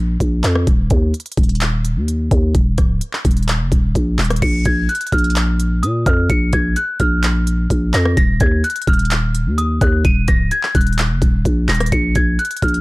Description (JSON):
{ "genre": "hip hop, trap", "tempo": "128 BPM", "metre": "4/4", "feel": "half-time", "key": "Bb minor", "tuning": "A4 = 441 Hz", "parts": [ { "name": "growling 808-style bass", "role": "bass", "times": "0.0-12.8 s", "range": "Db1 to Bb2", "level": "-16 LUFS", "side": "equal", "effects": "none" }, { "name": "trap drum kit", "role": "drums", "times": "0.2-12.8 s", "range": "crash cymbal, handclaps, hi-hat, kick drum, rim click", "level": "-18 LUFS", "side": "equal", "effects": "none" }, { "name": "worn celesta", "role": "melody", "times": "4.4-12.8 s", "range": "Eb6 to Eb7", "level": "-21 LUFS", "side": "equal", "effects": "none" } ], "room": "little or no reverb", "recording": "dark, warm production", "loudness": "-14 LUFS", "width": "side -22 dB against mid", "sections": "0.0-4.4 A section; 4.4-12.8 B section", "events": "break 0.0-4.4", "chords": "0.0 Bb5; 0.7 Eb5; 4.4 Bb5; 8.2 Ebm; 11.9 Bb5" }